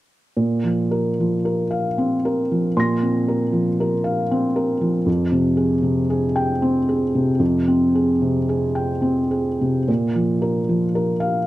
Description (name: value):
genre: neoclassical minimalist piano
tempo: 67-79 BPM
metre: 3/4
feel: rubato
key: unclear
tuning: A4 = 440 Hz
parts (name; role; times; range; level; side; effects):
- felt-muted upright piano; solo; 0.4-11.5 s; F2 to Bb6; -18 LUFS; equal; none
room: small room reverb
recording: dry, close 1970s-style studio recording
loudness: -18 LUFS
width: side -16 dB against mid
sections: 0.4-9.9 A section; 9.9-11.5 B section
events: none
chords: 0.4 Bbsus2; 5.1 Fmadd9; 9.9 Bb5